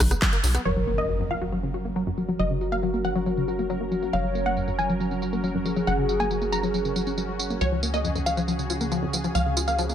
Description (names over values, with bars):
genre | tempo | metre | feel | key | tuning
uplifting trance | 138 BPM | 4/4 | straight | F# major | A4 = 440 Hz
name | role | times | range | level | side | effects
tight sequenced synth | arpeggios | 0.0-9.9 s | E#2 to F#4 | -28 LUFS | left 2 dB | chorus, sidechain pumping, digital delay
tight sequencer bass | bass | 0.0-9.9 s | F#1 to C#2 | -30 LUFS | equal | sidechain pumping
big-room dance drum kit | drums | 0.0-9.9 s | handclaps, hi-hat, rim click, tambourine | -30 LUFS | right 2 dB | low-pass filter on hats, low-pass filter on perc, low-pass filter on snare
wide unison pluck | melody | 0.7-9.9 s | C#5 to A#5 | -29 LUFS | equal | sidechain pumping, digital delay
warm velvety synth lead | second line | 0.7-7.5 s | F#4 to C#5 | -30 LUFS | equal | chorus, vintage 12-bit sampler grit, digital delay
lush unison pad | sustained chords | 0.7-9.9 s | C#3 to A#4 | -31 LUFS | right 1 dB | chorus, phaser, sidechain pumping
impact | sound effects | 0.7-2.4 s | none | -33 LUFS | equal | none
room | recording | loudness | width
moderate recital hall reverb, RT60 1.6 s | none | -23 LUFS | side -9 dB against mid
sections
0.7-9.9 A section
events
band accent 0.2; impact 0.7-2.4; filter sweep on drum 0.7-9.9; filter sweep on synth arpeggio sound 0.7-9.9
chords
0.0 B5; 0.7 F#maj7; 7.6 C#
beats
0.22 | 0.66 1.09 1.52 1.96 | 2.39 2.83 3.26 3.70 | 4.13 4.57 5.00 5.44 | 5.87 6.31 6.74 7.18 | 7.61 8.05 8.48 8.92 | 9.35 9.79